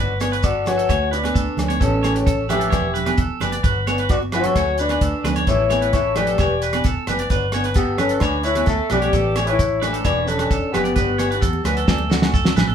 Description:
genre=highlife guitar band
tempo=131 BPM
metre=4/4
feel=straight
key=D major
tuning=A4 = 440 Hz
part: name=picked old ladder-braced acoustic guitar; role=accompaniment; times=0.0-12.6 s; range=E3 to G4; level=-29 LUFS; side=left 4 dB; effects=none
part: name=clean electric guitar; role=arpeggios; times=0.0-12.7 s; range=F#4 to D5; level=-25 LUFS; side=right 4 dB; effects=none
part: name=vintage muted fingered electric bass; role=bass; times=0.0-12.7 s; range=E1 to E2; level=-25 LUFS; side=equal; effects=none
part: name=damped 70s drum kit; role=drums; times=0.2-12.7 s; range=hi-hat, kick drum, rim click, snare drum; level=-22 LUFS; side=right 1 dB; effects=none
part: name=agogo bells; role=percussion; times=0.2-12.7 s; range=none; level=-33 LUFS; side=left 2 dB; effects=none
part: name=congas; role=percussion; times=0.2-12.7 s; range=none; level=-28 LUFS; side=right 6 dB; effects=none
part: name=shekere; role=percussion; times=0.2-12.7 s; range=none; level=-31 LUFS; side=left 1 dB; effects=none
part: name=electric guitar through a small old amp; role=melody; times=0.4-11.6 s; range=B3 to E5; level=-22 LUFS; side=left 3 dB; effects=none
part: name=warm alto saxophone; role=second line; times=0.4-11.6 s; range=B3 to A4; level=-28 LUFS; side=left 3 dB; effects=none
room=wet studio ambience, RT60 0.5 s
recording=band playing live in one room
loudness=-17 LUFS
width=side -8 dB against mid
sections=0.0-11.9 A section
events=drum fill 4.2-4.6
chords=0.0 Gmaj7; 0.9 Dmaj7; 1.8 A7; 2.7 Em7; 3.6 Gmaj7; 4.6 Dmaj7; 5.5 A7; 6.4 Em7; 7.3 Gmaj7; 8.2 Dmaj7; 9.1 A7; 10.1 Em7; 11.0 Gmaj7; 11.9 D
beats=0.44 | 0.90 1.35 1.81 2.27 | 2.73 3.18 3.64 4.10 | 4.56 5.01 5.47 5.93 | 6.39 6.85 7.30 7.76 | 8.22 8.68 9.13 9.59 | 10.05 10.51 10.96 11.42 | 11.88 12.34

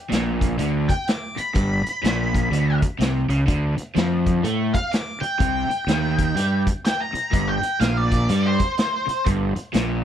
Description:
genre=blues rock power trio and southern rock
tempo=125 BPM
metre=4/4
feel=swing 62% on 8ths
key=unclear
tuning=A4 = 439 Hz
part: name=crunchy overdriven guitar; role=riff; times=0.1-10.0 s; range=G2 to A3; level=-22 LUFS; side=right 1 dB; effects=none
part: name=fuzz fingered electric bass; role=bass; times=0.1-10.0 s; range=G1 to A2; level=-26 LUFS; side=equal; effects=overdrive
part: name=vintage drum kit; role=drums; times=0.1-9.9 s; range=hi-hat, kick drum, snare drum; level=-24 LUFS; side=equal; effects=none
part: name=octave-fuzz lead guitar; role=melody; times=0.9-9.2 s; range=C5 to D6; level=-25 LUFS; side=equal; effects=wah, distortion
room=little or no reverb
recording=none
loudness=-19 LUFS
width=side -10 dB against mid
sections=0.0-10.0 A section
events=none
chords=0.0 G; 3.5 D5; 5.4 C5; 7.3 Gm; 8.3 C5; 9.3 Gm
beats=0.11 0.59 1.07 | 1.55 2.03 2.52 3.00 | 3.48 3.96 4.44 4.92 | 5.41 5.89 6.37 6.85 | 7.33 7.81 8.29 8.78 | 9.26 9.74

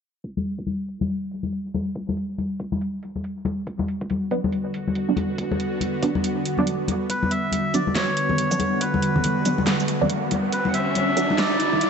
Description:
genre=deep dubstep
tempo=140 BPM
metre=4/4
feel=swing 61% on 16ths, half-time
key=B minor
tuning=A4 = 440 Hz
part: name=dubstep drum kit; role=drums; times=0.2-11.9 s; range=handclaps, hi-hat, shaker, snare drum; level=-28 LUFS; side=right 2 dB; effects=none
part: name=electronic kick drum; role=drums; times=0.2-10.6 s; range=none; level=-35 LUFS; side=equal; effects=high-pass filter on kick
part: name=congas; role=percussion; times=0.4-11.8 s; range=none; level=-26 LUFS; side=left 2 dB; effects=dub echo
part: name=bowed-like drone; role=sustained chords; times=4.4-11.9 s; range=D3 to F#4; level=-28 LUFS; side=right 1 dB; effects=built-in reverb, phaser
part: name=filtered dub chord stab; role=stabs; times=4.3-11.2 s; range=F#3 to D4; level=-27 LUFS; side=right 3 dB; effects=phaser, lush chorus, dub echo
part: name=melodica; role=melody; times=7.1-11.9 s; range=B4 to F#5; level=-25 LUFS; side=equal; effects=dub echo
part: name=riser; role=sound effects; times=8.9-11.9 s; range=none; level=-26 LUFS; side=right 1 dB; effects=none
room=moderate lush hall reverb, RT60 1.6 s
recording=high-pass filter, low-pass filter, nothing above 8.0 kHz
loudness=-21 LUFS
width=side -6 dB against mid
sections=0.2-7.1 A section; 7.1-11.9 B section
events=filter sweep 0.2-7.1; build-up 7.1-11.9; filter sweep on synth stab 7.1-11.9; filter sweep on synth drone 7.1-11.9; riser 8.9-11.9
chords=0.2 Bm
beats=| 0.24 0.67 1.10 1.53 | 1.96 2.38 2.81 3.24 | 3.67 4.10 4.53 4.96 | 5.38 5.81 6.24 6.67 | 7.10 7.53 7.96 8.38 | 8.81 9.24 9.67 10.10 | 10.53 10.96 11.38 11.81

